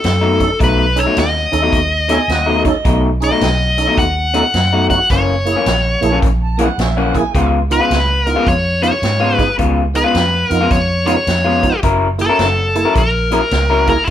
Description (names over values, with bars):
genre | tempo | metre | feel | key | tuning
electric blues shuffle | 107 BPM | 4/4 | swing 64% on 8ths | unclear | A4 = 440 Hz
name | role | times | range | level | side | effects
dark smooth lead guitar | melody | 0.0-14.1 s | E4 to F#5 | -16 LUFS | left 1 dB | overdrive
vintage muted fingered electric bass | bass | 0.0-14.1 s | F#1 to G#2 | -18 LUFS | right 1 dB | none
vintage drum kit | drums | 0.0-14.1 s | hi-hat, kick drum, snare drum | -20 LUFS | equal | none
electric guitar through a small old amp | riff | 0.2-14.1 s | F#2 to A#4 | -18 LUFS | left 3 dB | none
tonewheel organ | accompaniment | 0.4-14.0 s | A#3 to A4 | -21 LUFS | right 4 dB | slow rotary speaker, overdrive, chorus vibrato
overdriven harmonica | second line | 2.1-7.5 s | G#4 to A5 | -24 LUFS | right 5 dB | none
room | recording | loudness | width
light reverb | band playing live in one room | -12 LUFS | side -11 dB against mid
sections
0.0-14.1 A section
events
none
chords
0.0 B7; 5.1 F#7; 7.3 C#7; 11.8 F#7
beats
0.04 | 0.61 1.17 1.73 2.29 | 2.85 3.41 3.97 4.54 | 5.10 5.66 6.22 6.78 | 7.34 7.90 8.46 9.03 | 9.59 10.15 10.71 11.27 | 11.84 12.40 12.96 13.52 | 14.08